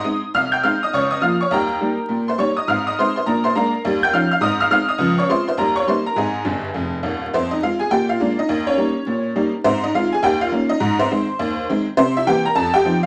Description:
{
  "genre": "jazz, stride piano",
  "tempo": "206 BPM",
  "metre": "4/4",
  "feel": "swing 63% on 8ths",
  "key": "Ab major",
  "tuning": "A4 = 439 Hz",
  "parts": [
    { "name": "tack piano", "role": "solo", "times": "0.0-13.1 s", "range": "Eb1 to G6", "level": "-19 LUFS", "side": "equal", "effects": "none" }
  ],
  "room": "wet studio reverb, RT60 0.7 s",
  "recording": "vinyl crackle",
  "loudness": "-19 LUFS",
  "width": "mono",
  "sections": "0.0-7.3 A section; 7.3-13.1 B section",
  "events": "honky-tonk piano fill 6.5-7.3",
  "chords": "0.3 Ab/C; 0.9 Bbm/Db; 1.5 Eb; 2.7 Ab; 3.3 Bb7; 3.8 Eb9; 4.4 Ab; 5.0 Dbmaj7; 5.6 Eb; 6.2 Ab; 7.3 Fm; 7.9 Bb7; 8.5 Eb7; 9.6 Ab; 10.2 Eb7; 10.8 Ab; 12.0 C7; 12.6 F7",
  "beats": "0.05 | 0.34 0.63 0.93 1.22 | 1.51 1.80 2.09 2.38 | 2.67 2.96 3.26 3.55 | 3.84 4.13 4.42 4.71 | 5.00 5.29 5.58 5.87 | 6.16 6.45 6.75 7.04 | 7.33 7.62 7.91 8.20 | 8.49 8.78 9.07 9.36 | 9.65 9.94 10.23 10.52 | 10.81 11.10 11.39 11.68 | 11.97 12.26 12.55 12.84"
}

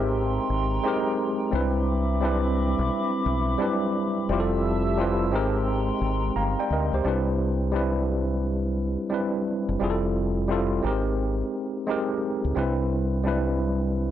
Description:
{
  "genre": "lo-fi hip hop",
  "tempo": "87 BPM",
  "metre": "4/4",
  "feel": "swing 65% on 16ths",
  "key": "C major",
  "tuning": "A4 = 444 Hz",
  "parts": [
    { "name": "tine electric piano", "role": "accompaniment", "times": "0.0-14.1 s", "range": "G3 to Bb5", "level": "-25 LUFS", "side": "equal", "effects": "overdrive, medium stereo tremolo, low-pass filter" },
    { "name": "warbly tape-like pad", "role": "sustained chords", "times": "0.0-7.0 s", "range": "Ab3 to E6", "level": "-30 LUFS", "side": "equal", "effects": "chorus, built-in reverb, low-pass filter" },
    { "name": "deep dub fingered electric bass", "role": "bass", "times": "0.0-14.1 s", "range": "F1 to D2", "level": "-27 LUFS", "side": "equal", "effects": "tube saturation" }
  ],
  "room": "light reverb",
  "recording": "dry, gritty hardware recording, transformer saturation",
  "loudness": "-23 LUFS",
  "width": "side -11 dB against mid",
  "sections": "0.0-7.0 A section; 7.0-14.1 B section",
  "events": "none",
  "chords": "0.0 Abmaj9; 1.5 Cmaj9; 4.3 Fmaj9; 5.3 Abmaj9; 7.0 Cmaj9; 9.8 Fmaj9; 10.8 Abmaj9; 12.6 Cmaj9",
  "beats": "0.15 0.84 | 1.53 2.22 2.91 3.60 | 4.29 4.97 5.67 6.35 | 7.04 7.73 8.42 9.11 | 9.80 10.49 11.18 11.87 | 12.56 13.25 13.94"
}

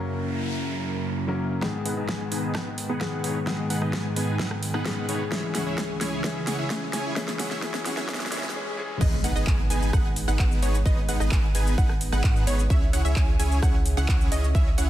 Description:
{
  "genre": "EDM, festival progressive house",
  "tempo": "130 BPM",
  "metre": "4/4",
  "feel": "straight",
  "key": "G# minor",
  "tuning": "A4 = 441 Hz",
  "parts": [
    { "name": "clear grand piano", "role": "accompaniment", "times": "0.0-9.0 s", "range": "G#2 to A#4", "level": "-31 LUFS", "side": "left 3 dB", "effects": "sidechain pumping, digital delay" },
    { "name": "lush unison pad", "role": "sustained chords", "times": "0.0-14.9 s", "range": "C#2 to G#4", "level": "-33 LUFS", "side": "right 1 dB", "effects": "chorus, sidechain pumping" },
    { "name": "noise sweep, riser, swell and impact", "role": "sound effects", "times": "0.0-10.9 s", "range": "none", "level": "-38 LUFS", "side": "right 1 dB", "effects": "none" },
    { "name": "dense compressed supersaw", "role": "riff", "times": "1.6-14.9 s", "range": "B3 to G#5", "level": "-31 LUFS", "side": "right 1 dB", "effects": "sidechain pumping, low-pass filter, digital delay" },
    { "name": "big-room dance drum kit", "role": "drums", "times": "1.6-14.9 s", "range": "crash cymbal, handclaps, hi-hat, rim click, shaker, snare drum", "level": "-32 LUFS", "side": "equal", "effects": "overdrive" },
    { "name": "electronic kick drum", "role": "drums", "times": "1.6-14.6 s", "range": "none", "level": "-24 LUFS", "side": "equal", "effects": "high-pass filter on kick" },
    { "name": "wide unison pluck", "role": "arpeggios", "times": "9.0-14.9 s", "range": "C#5 to G#5", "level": "-34 LUFS", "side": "right 1 dB", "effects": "sidechain pumping, digital delay" },
    { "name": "saturated sub bass", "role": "bass", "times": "9.0-14.9 s", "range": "G#1 to G#2", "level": "-26 LUFS", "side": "equal", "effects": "sidechain pumping" }
  ],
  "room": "little or no reverb",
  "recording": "dense, heavily limited modern master, high-pass filter",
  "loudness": "-23 LUFS",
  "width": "side -13 dB against mid",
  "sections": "0.0-1.6 A section; 1.6-9.0 B section; 9.0-14.9 C section",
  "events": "noise sweep 0.0-1.6; build-up 1.6-9.0; drum fill 1.6-8.5; filter sweep on supersaw synth 1.6-9.0; filter sweep 1.6-9.0; swell 8.1-9.0; drop 9.0-14.9; impact 9.0-10.9",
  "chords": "0.0 F#; 1.6 G#m; 5.3 C#m; 9.0 G#m; 12.7 C#m",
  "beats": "0.24 0.70 1.16 | 1.63 2.09 2.55 3.01 | 3.47 3.93 4.39 4.86 | 5.32 5.78 6.24 6.70 | 7.16 7.63 8.09 8.55 | 9.01 9.47 9.93 10.39 | 10.86 11.32 11.78 12.24 | 12.70 13.16 13.63 14.09 | 14.55"
}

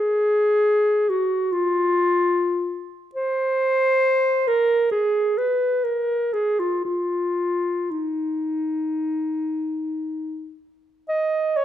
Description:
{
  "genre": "classical, free, expressive piece for unaccompanied clarinet",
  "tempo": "51-74 BPM",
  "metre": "4/4",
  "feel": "rubato",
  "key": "unclear",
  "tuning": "A4 = 442 Hz",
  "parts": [
    { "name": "warm clarinet", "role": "solo", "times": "0.0-11.6 s", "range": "Eb4 to Eb5", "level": "-20 LUFS", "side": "equal", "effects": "none" }
  ],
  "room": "moderate recital hall reverb, RT60 1.7 s",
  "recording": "minimal, uncompressed stereo recording",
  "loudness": "-20 LUFS",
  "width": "side -11 dB against mid",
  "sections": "0.0-11.6 A section",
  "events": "none",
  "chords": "none",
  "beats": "0.65 1.51 2.33 | 3.15 4.03 4.92 5.85 | 6.84 7.88 8.94 10.01 | 11.10"
}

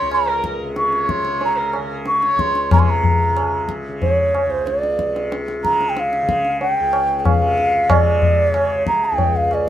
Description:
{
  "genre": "indian classical, Hindustani",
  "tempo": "93 BPM",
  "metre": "4/4",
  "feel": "straight",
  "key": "C# raga marwa",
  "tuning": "A4 = 444 Hz",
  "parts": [
    { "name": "mellow hollow bansuri", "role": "melody", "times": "0.0-9.7 s", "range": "B#4 to C#6", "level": "-18 LUFS", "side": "right 1 dB", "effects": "none" },
    { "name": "warm sarangi", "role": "second line", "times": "0.0-2.8 s", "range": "A#4 to C#5", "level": "-27 LUFS", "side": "left 2 dB", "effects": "none" },
    { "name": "tanpura", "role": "drone", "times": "0.0-9.7 s", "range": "C#2 to C#3", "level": "-26 LUFS", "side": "left 1 dB", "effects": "none" },
    { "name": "tabla", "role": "percussion", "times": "0.1-9.7 s", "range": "none", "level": "-19 LUFS", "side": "left 2 dB", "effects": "none" }
  ],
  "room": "light reverb",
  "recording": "minimal, uncompressed stereo recording",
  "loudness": "-16 LUFS",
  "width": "side -11 dB against mid",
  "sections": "0.0-2.7 A section; 2.7-9.7 B section",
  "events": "none",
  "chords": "none",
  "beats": "| 0.11 0.77 1.42 2.07 | 2.72 3.37 4.01 4.66 | 5.31 5.96 6.61 7.25 | 7.90 8.54 9.18"
}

